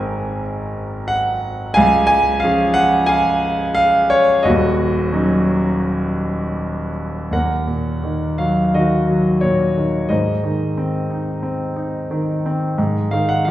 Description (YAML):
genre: classical, lyrical solo piano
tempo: 89 BPM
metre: 4/4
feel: rubato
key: Eb dorian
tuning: A4 = 438 Hz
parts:
  - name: clear concert grand piano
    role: solo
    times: 0.0-13.5 s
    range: Eb1 to Ab5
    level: -16 LUFS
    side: equal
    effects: none
room: wet recital hall reverb, RT60 1.6 s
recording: heard from further back in the room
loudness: -16 LUFS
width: side -13 dB against mid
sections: 0.0-7.3 A section; 7.3-13.5 B section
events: none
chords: 0.0 Abadd9; 1.8 Db; 4.4 Ebm7; 7.3 Ebm; 10.1 Ab; 12.8 Fm7/Ab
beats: 0.43 1.10 | 1.77 2.43 3.10 3.77 | 4.45 5.13 5.83 6.57 | 7.32 8.03 8.74 9.42 | 10.09 10.76 11.42 12.10 | 12.78 13.46